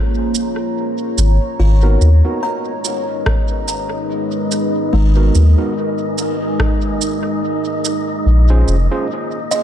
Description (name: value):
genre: ambient dub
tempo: 72 BPM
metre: 4/4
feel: swing 56% on 16ths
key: G# dorian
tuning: A4 = 439 Hz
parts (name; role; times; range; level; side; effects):
- deep dark ambient pad; sustained chords; 0.0-9.6 s; G#3 to A#5; -20 LUFS; equal; chorus, built-in reverb
- electronic shaker and rim click; drums; 0.3-9.6 s; none; -25 LUFS; right 4 dB; dub echo
- soft dub sub bass; bass; 1.2-8.9 s; E#1 to D#2; -10 LUFS; equal; none
- buzzing kalimba; arpeggios; 1.6-9.6 s; G#3 to A#5; -26 LUFS; equal; tape echo
- wind-like tuned noise texture; texture; 2.6-9.6 s; D#4 to D#5; -27 LUFS; left 3 dB; built-in reverb
- overdriven tine electric piano; stabs; 1.8-9.1 s; B3 to B#4; -26 LUFS; right 4 dB; dub echo
- electronic kick drum; drums; 3.3-6.8 s; none; -18 LUFS; equal; none
room: digital ambience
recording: none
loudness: -14 LUFS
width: side -10 dB against mid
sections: 0.0-9.6 A section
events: none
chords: 0.0 A#m7; 1.6 G#m; 8.3 A#m7